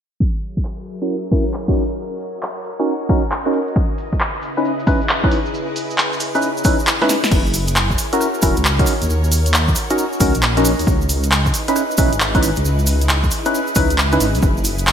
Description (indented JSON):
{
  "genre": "UK garage, two-step garage",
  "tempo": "135 BPM",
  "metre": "4/4",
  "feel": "swing 65% on 16ths",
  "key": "C# dorian",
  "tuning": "A4 = 440 Hz",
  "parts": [
    { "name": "soft string machine", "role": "sustained chords", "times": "0.5-14.9 s", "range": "C#3 to E5", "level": "-28 LUFS", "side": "left 1 dB", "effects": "ensemble chorus, sidechain pumping" },
    { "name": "electronic kick drum", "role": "drums", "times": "0.2-14.5 s", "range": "none", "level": "-19 LUFS", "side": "equal", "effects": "studio reverb" },
    { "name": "punchy analog drum machine", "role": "drums", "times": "0.4-14.9 s", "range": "crash cymbal, handclaps, hi-hat, rim click, snare drum", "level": "-20 LUFS", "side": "equal", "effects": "studio reverb, gated reverb" },
    { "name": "percussive organ stab", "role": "stabs", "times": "1.0-14.3 s", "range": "C#4 to B4", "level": "-20 LUFS", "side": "equal", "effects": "analog chorus, ping-pong delay" },
    { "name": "cabasa", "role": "percussion", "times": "3.8-14.9 s", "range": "none", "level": "-27 LUFS", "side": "right 3 dB", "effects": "none" },
    { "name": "dark detuned saw bass", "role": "bass", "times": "7.3-14.9 s", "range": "E1 to D#2", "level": "-18 LUFS", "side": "equal", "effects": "none" }
  ],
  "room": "moderate lush hall reverb, RT60 2.3 s",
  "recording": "bright 1980s-style digital production, low-pass filter",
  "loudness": "-15 LUFS",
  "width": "side -8 dB against mid",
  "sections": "0.2-7.3 A section; 7.3-14.9 B section",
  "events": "filter sweep on synth stab 0.2-7.3; filter sweep 0.2-7.3; drum fill 7.0-7.3",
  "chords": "0.2 F#7; 1.8 D#m7; 3.8 C#m9; 7.3 F#7; 8.9 D#m7; 10.9 C#m9"
}